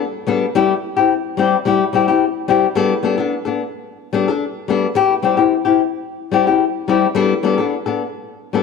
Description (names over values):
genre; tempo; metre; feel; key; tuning
highlife; 109 BPM; 4/4; swing 54% on 16ths; G major; A4 = 435 Hz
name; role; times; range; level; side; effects
flamenco guitar; solo; 0.0-8.6 s; G3 to A4; -15 LUFS; left 6 dB; none
room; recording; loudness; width
moderate echo chamber reverb, RT60 1.8 s, small room ambience; none; -15 LUFS; side -4 dB against mid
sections
0.0-2.8 A section; 2.8-8.6 B section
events
none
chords
0.0 Gadd9; 0.5 C; 2.8 Gadd9; 5.0 C; 7.2 Gadd9